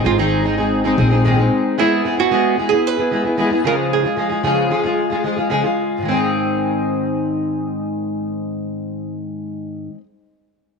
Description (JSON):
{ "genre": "acoustic pop", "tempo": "113 BPM", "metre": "4/4", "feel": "straight", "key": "Ab major", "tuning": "A4 = 440 Hz", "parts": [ { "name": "flamenco guitar", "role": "melody", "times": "0.0-5.5 s", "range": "Eb4 to B4", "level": "-20 LUFS", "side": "right 11 dB", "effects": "none" }, { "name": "fingerpicked plugged-in steel-string acoustic guitar", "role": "accompaniment", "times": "0.0-10.0 s", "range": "Ab2 to Ab4", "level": "-18 LUFS", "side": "left 1 dB", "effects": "double-tracked left and right" }, { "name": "upright bass", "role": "bass", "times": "0.0-1.5 s", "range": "Ab1 to Bb1", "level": "-18 LUFS", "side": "left 1 dB", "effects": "none" } ], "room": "moderate spring reverb, RT60 2.7 s", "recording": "1960s-style stereo", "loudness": "-16 LUFS", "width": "side -5 dB against mid", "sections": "0.0-6.0 A section; 6.0-10.3 B section", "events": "none", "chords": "0.0 Ab; 1.8 E/G#; 3.6 Db; 6.0 Ab" }